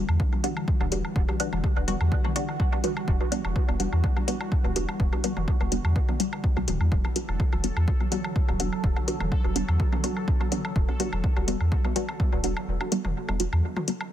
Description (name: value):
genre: dub techno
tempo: 125 BPM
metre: 4/4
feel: swing 54% on 16ths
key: E minor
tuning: A4 = 440 Hz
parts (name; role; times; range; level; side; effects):
- warbly tape-like pad; sustained chords; 0.0-14.1 s; D3 to G3; -35 LUFS; right 1 dB; chorus, built-in reverb, phaser, sidechain pumping
- filtered dub chord stab; stabs; 0.0-14.0 s; G3 to F#4; -31 LUFS; equal; phaser, sidechain pumping, dub echo
- warm sub bass; bass; 0.0-13.6 s; D1 to E2; -27 LUFS; equal; sidechain pumping
- bubbling stepped-filter texture; texture; 0.4-14.1 s; F#4 to A4; -41 LUFS; right 3 dB; chorus, built-in reverb, sidechain pumping
- electronic woodblock and toms; percussion; 0.1-14.1 s; none; -36 LUFS; left 2 dB; sidechain pumping on perc, sidechain pumping on toms, dub echo
- electronic kick drum; drums; 0.2-12.3 s; none; -25 LUFS; equal; none
- electronic hi-hat; drums; 0.4-14.0 s; none; -33 LUFS; left 4 dB; overdrive
room: little or no reverb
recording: dense, heavily limited modern master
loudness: -23 LUFS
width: side -11 dB against mid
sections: 0.0-14.1 A section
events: filter sweep on synth stab 0.0-14.1; break 12.7-14.1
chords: 0.0 Em7